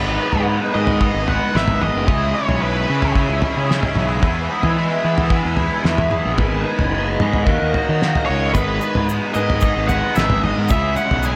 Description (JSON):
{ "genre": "psychedelic rock", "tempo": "112 BPM", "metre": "4/4", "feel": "straight", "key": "G# minor", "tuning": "A4 = 439 Hz", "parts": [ { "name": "octave-fuzz lead guitar", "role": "melody", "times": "0.0-3.1, 8.3-11.4 s", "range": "B4 to G#5", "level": "-25 LUFS", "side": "equal", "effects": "distortion, analog delay" }, { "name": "string machine, violins", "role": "sustained chords", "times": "0.0-11.4 s", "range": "A#4 to B5", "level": "-31 LUFS", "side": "equal", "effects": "ensemble chorus" }, { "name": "raw garage guitar", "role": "riff", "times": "0.0-11.4 s", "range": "E2 to B4", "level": "-24 LUFS", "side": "equal", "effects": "overdrive, flanger" }, { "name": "fuzz fingered electric bass", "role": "bass", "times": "0.0-11.4 s", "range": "F#1 to E3", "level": "-24 LUFS", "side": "equal", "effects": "overdrive" }, { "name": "cloth-damped thuddy drum kit", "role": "drums", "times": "0.3-11.2 s", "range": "kick drum, snare drum, toms", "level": "-23 LUFS", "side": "equal", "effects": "none" }, { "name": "egg shaker", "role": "percussion", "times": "8.5-11.4 s", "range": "none", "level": "-41 LUFS", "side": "equal", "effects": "none" } ], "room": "light reverb, studio ambience", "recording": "none", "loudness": "-18 LUFS", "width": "mono", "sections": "0.0-11.4 A section", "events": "none", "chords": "0.0 G#m; 2.1 C#m7; 4.2 E; 6.4 G#m; 7.5 D#m; 8.5 G#m; 10.7 C#m7" }